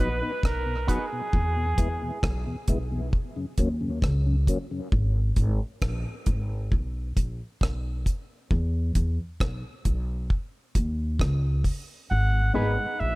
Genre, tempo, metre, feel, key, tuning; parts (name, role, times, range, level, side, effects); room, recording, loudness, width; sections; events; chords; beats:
dub reggae; 67 BPM; 4/4; straight; A4 = 439 Hz
clear flugelhorn; melody; 0.0-2.6, 12.1-13.2 s; G#4 to F#5; -30 LUFS; right 2 dB; dub echo
electric guitar with an envelope filter; accompaniment; 0.0-1.0, 12.5-12.7 s; B3 to B4; -35 LUFS; right 3 dB; dub echo
mellow tonewheel organ; accompaniment; 0.0-4.8, 12.3-12.9 s; E2 to E4; -33 LUFS; left 2 dB; overdrive, chorus vibrato, slow rotary speaker, dub echo
upright bass; bass; 0.0-13.2 s; G#1 to E2; -26 LUFS; equal
deep reggae drum kit; drums; 0.4-11.9 s; hi-hat, kick drum, rim click; -26 LUFS; equal
dark upright piano; stabs; 12.5-12.7 s; B3 to B4; -30 LUFS; left 2 dB; dub echo
little or no reverb; -24 LUFS; side -22 dB against mid
0.0-13.2 A section
break 0.0-12.1; part muted 12.1-13.2
0.0 B; 1.3 E; 3.1 F#; 4.9 N.C.; 8.5 E5; 10.3 C#sus2; 12.1 G#m
0.44 | 1.33 2.23 3.13 4.03 | 4.92 5.82 6.71 7.61 | 8.51 9.40 10.30 11.20 | 12.09 12.99